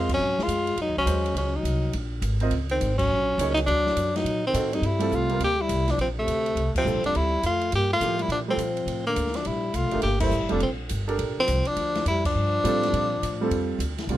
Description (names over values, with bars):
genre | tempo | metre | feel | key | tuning
modal jazz | 207 BPM | 4/4 | swing 62% on 8ths | G dorian from 4.8 s | A4 = 440 Hz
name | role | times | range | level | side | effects
breathy tenor saxophone | melody | 0.0-13.8 s | A3 to G4 | -25 LUFS | equal | none
breathy trombone | second line | 0.0-13.8 s | C3 to Bb3 | -32 LUFS | left 6 dB | none
warm grand piano | accompaniment | 0.0-14.2 s | D3 to Eb5 | -29 LUFS | right 4 dB | none
upright bass | bass | 0.0-14.2 s | F1 to Bb2 | -28 LUFS | equal | none
open jazz drum kit | drums | 0.1-14.2 s | crash cymbal, hi-hat, kick drum, ride cymbal, snare drum | -35 LUFS | right 1 dB | none
room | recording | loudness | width
light reverb | close, detailed microphones | -22 LUFS | side -13 dB against mid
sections
0.0-4.8 A section; 4.8-14.1 B section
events
band accent 0.1, 2.9, 6.7, 10.2, 12.2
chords
0.2 Ab9sus4; 3.7 D7b9; 4.8 Gm11